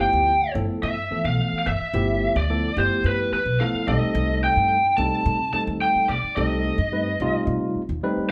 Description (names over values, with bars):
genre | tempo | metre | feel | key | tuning
electric jazz fusion | 108 BPM | 4/4 | straight | unclear | A4 = 440 Hz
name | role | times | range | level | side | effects
lead guitar through a small cranked amp | melody | 0.0-7.4 s | B4 to A5 | -25 LUFS | equal | overdrive
tine electric piano | accompaniment | 0.0-8.3 s | E3 to B4 | -28 LUFS | equal | none
upright bass | bass | 0.0-8.2 s | G1 to C3 | -28 LUFS | equal | none
room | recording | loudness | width
moderate large studio reverb, RT60 1.1 s | band playing live in one room | -22 LUFS | mono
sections
0.0-8.3 A section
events
none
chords
0.0 G13; 3.9 Cm6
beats
0.27 0.82 1.38 | 1.93 2.49 3.04 3.59 | 4.15 4.70 5.26 5.81 | 6.37 6.92 7.47 8.03